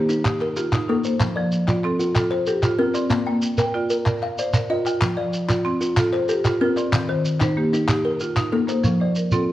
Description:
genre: southern african traditional, mbira-style interlocking cycle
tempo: 126 BPM (dotted quarters)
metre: 12/8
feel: straight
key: F mixolydian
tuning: A4 = 442 Hz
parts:
  - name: kalimba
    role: arpeggios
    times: 0.0-9.5 s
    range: Eb3 to G5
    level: -23 LUFS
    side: left 2 dB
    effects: none
  - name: marimba with medium hard mallets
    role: arpeggios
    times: 0.0-9.5 s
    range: Eb3 to G5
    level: -23 LUFS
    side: right 2 dB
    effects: none
  - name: shekere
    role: percussion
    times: 0.1-9.5 s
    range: none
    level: -25 LUFS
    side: right 1 dB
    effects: none
  - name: group handclap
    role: percussion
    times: 0.3-8.8 s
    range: none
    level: -30 LUFS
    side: left 2 dB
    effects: none
room: moderate recital hall reverb, RT60 1.8 s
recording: worn, warbling old tape, cassette tape, warbly pitch drift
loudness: -19 LUFS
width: side -14 dB against mid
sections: 0.0-8.8 A section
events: none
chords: 0.0 Eb; 1.2 F; 3.1 Bb; 5.0 F; 6.9 Eb; 8.8 F

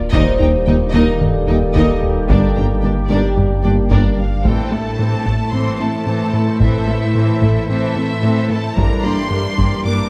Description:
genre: cinematic, hybrid orchestral and electronic film score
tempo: 111 BPM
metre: 4/4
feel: straight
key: unclear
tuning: A4 = 441 Hz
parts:
  - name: deep dark ambient pad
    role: sustained chords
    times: 0.0-10.1 s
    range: E3 to D5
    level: -27 LUFS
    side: equal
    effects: chorus, built-in reverb
  - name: pure sine sub bass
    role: bass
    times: 0.0-4.5 s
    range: D1 to G1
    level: -23 LUFS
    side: equal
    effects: none
  - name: clear symphonic violin section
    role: melody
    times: 0.1-10.1 s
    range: D5 to D6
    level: -30 LUFS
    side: equal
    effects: none
  - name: rich chamber violin section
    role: second line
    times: 0.1-10.1 s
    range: E4 to G5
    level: -31 LUFS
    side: equal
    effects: none
  - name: clear symphonic viola section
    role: accompaniment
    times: 0.1-10.1 s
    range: E3 to Eb4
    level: -29 LUFS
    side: equal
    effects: none
  - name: dark French horn section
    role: sustained chords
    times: 0.1-3.9 s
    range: G4 to C5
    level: -25 LUFS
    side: equal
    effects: none
  - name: dark trombone section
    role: sustained chords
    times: 0.1-4.1 s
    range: G3 to Bb3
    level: -27 LUFS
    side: equal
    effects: none
  - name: harp-like synth pluck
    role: arpeggios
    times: 0.1-10.0 s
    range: Eb3 to A4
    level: -28 LUFS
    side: equal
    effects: none
  - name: plucky analog bass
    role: riff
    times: 0.1-10.0 s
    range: Eb2 to A3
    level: -22 LUFS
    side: equal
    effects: none
  - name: rich symphonic cello section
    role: bass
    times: 0.1-10.1 s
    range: Eb2 to A2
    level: -24 LUFS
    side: equal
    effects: none
  - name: warm symphonic double bass section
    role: bass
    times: 0.1-4.0 s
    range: G1 to Eb2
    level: -26 LUFS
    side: equal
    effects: none
  - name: warm tuba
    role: bass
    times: 0.1-4.0 s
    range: G1 to Eb2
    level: -26 LUFS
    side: equal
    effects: none
  - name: taiko ensemble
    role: drums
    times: 0.1-10.1 s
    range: none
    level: -24 LUFS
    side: equal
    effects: none
room: moderate scoring stage reverb, RT60 1.7 s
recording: none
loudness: -16 LUFS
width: mono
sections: 0.0-4.5 A section; 4.5-10.1 B section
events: none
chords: 0.1 Eb; 2.3 Gm; 4.5 Am; 8.8 Gm

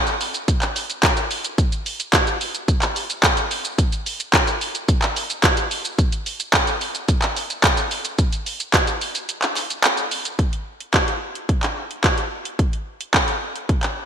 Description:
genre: pop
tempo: 109 BPM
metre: 4/4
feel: straight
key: none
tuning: none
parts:
  - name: pop drum kit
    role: drums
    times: 0.1-14.0 s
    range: handclaps, hi-hat, kick drum, shaker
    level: -18 LUFS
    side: equal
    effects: gated reverb
  - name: group handclap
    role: percussion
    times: 1.0-10.0 s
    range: none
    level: -33 LUFS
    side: left 3 dB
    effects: none
room: moderate lush hall reverb, RT60 2.0 s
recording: bright 1980s-style digital production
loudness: -18 LUFS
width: side -8 dB against mid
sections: 0.0-10.4 A section; 10.4-14.1 B section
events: drop 0.0-10.4; kick muted 9.3-10.4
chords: none

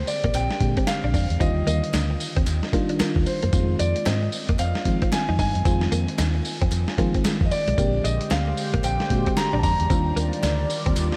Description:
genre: R&B, new jack swing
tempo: 113 BPM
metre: 4/4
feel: swing 62% on 16ths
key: F dorian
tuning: A4 = 440 Hz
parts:
  - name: warm concert grand piano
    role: melody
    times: 0.0-11.2 s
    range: C5 to Bb5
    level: -31 LUFS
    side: equal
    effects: tape echo
  - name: FM electric piano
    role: accompaniment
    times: 0.0-11.2 s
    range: D3 to G4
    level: -31 LUFS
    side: equal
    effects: none
  - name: vintage muted fingered electric bass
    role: bass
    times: 0.0-11.1 s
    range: Bb1 to F3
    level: -27 LUFS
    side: equal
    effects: none
  - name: dusty soul sampler-style drum kit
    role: drums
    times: 0.1-11.2 s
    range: hi-hat, kick drum, snare drum, tambourine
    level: -28 LUFS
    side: equal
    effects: none
  - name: direct-recorded clean electric guitar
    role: riff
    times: 0.2-11.0 s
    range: Ab3 to Eb4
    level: -34 LUFS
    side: equal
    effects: ensemble chorus
  - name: group handclap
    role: percussion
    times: 0.3-11.1 s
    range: none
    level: -46 LUFS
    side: equal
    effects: none
  - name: phased analog pad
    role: sustained chords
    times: 7.8-11.2 s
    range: D3 to D5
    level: -32 LUFS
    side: equal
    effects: phaser, chorus
room: moderate huge ambient reverb, RT60 5.0 s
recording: dreamy mix soaked in reverb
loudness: -23 LUFS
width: mono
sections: 0.0-11.2 A section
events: none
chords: 0.0 Bb13; 1.4 Ebmaj9; 3.5 Fm7; 7.8 Bb13; 9.9 Ebmaj9

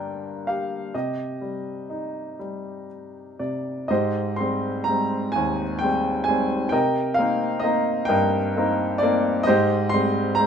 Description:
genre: classical, lyrical solo piano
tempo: 40-45 BPM (dotted quarters)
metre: 6/8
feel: rubato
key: C minor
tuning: A4 = 440 Hz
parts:
  - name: warm grand piano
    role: solo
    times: 0.0-10.5 s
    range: Eb2 to C6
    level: -21 LUFS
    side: equal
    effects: none
room: light reverb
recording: minimal, uncompressed stereo recording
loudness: -21 LUFS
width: side -7 dB against mid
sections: 0.0-3.9 A section; 3.9-10.5 B section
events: none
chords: 0.0 Gm; 0.9 Cm; 3.9 Abmaj7; 6.7 Cm7; 9.5 Abmaj7

